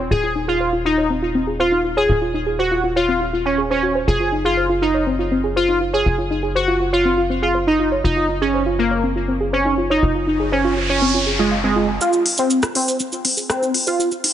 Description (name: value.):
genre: melodic techno.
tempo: 121 BPM.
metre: 4/4.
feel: straight.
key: unclear.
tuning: A4 = 440 Hz.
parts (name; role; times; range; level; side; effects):
soft round pluck; arpeggios; 0.0-14.3 s; C4 to Ab5; -22 LUFS; equal; chorus, dub echo.
tight sequencer bass; bass; 0.0-12.0 s; Eb1 to Gb1; -25 LUFS; equal; none.
resonant sweep polysynth; melody; 0.1-14.1 s; Ab3 to Ab4; -18 LUFS; equal; chorus, ping-pong delay.
noise sweep; sound effects; 10.4-12.0 s; none; -24 LUFS; right 2 dB; none.
cabasa; percussion; 12.0-14.2 s; none; -25 LUFS; right 2 dB; none.
techno drum kit; drums; 12.3-14.3 s; hi-hat, rim click; -20 LUFS; left 1 dB; none.
room: light reverb, digital ambience.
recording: heavily compressed radio sound, nothing above 10.6 kHz.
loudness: -16 LUFS.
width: side -10 dB against mid.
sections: 0.0-12.0 A section; 12.0-14.3 B section.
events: noise sweep 10.4-12.0; build-up 12.0-14.3; filter sweep on synth arpeggio sound 12.0-14.3; filter sweep on analog polysynth 12.0-14.3.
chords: 0.0 N.C.; 4.1 Gb5; 12.0 F5.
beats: | 0.11 0.60 1.10 1.60 | 2.09 2.59 3.08 3.58 | 4.08 4.57 5.07 5.56 | 6.06 6.55 7.05 7.55 | 8.04 8.54 9.03 9.53 | 10.03 10.52 11.02 11.51 | 12.01 12.51 13.00 13.50 | 13.99.